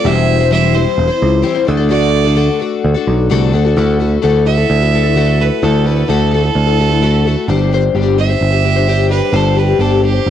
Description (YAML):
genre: folk rock and heartland rock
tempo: 129 BPM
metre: 4/4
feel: straight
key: unclear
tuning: A4 = 439 Hz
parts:
  - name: rich fiddle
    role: melody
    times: 0.0-10.3 s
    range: G4 to E5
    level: -18 LUFS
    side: right 10 dB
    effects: cassette tape
  - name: picked plugged-in twelve-string acoustic guitar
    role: accompaniment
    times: 0.0-10.3 s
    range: D3 to C5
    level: -15 LUFS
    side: left 8 dB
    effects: cassette tape
  - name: picked electric bass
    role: bass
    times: 0.1-10.3 s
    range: E1 to D2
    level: -13 LUFS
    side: right 2 dB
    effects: none
room: studio reverb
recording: home recording on cassette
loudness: -11 LUFS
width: side -10 dB against mid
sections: 0.0-3.8 A section; 3.8-10.3 B section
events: fiddle solo 3.8-10.3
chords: 0.1 C/E; 1.7 D; 3.8 Dadd9; 7.5 Gsus4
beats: | 0.06 0.52 0.99 1.45 | 1.92 2.38 2.84 3.31 | 3.77 4.24 4.70 5.17 | 5.63 6.10 6.56 7.02 | 7.49 7.95 8.41 8.88 | 9.34 9.80 10.26